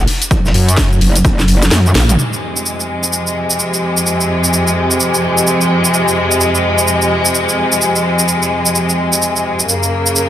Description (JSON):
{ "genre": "bass house", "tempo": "128 BPM", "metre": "4/4", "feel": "swing 61% on 16ths", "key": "F phrygian", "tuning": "A4 = 436 Hz", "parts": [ { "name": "metallic wobble bass", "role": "bass", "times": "0.0-2.2 s", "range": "Gb1 to Gb2", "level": "-12 LUFS", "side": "equal", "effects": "chorus, tube saturation, sidechain pumping" }, { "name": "crunchy breakbeat drum kit", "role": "drums", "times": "0.1-2.1 s", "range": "hi-hat, snare drum", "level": "-26 LUFS", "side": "equal", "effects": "none" }, { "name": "house drum kit", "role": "drums", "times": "0.1-10.3 s", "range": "hi-hat, shaker, snare drum, toms", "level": "-16 LUFS", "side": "equal", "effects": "overdrive, studio reverb" }, { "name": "electronic kick drum", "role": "drums", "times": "0.3-1.4 s", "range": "none", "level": "-14 LUFS", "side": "equal", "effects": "overdrive, studio reverb" }, { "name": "warm symphonic string section", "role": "sustained chords", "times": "2.2-10.3 s", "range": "F2 to Bb3", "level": "-13 LUFS", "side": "equal", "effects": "sidechain pumping" } ], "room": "moderate plate reverb, RT60 2.7 s", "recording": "dense, heavily limited modern master", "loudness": "-11 LUFS", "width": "side -11 dB against mid", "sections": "0.0-2.2 A section; 2.2-10.3 B section", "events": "drum fill 1.2-2.2; kick drops out 1.7-2.2; band accent 2.0", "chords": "0.0 N.C.; 2.2 Fm; 9.7 Gb" }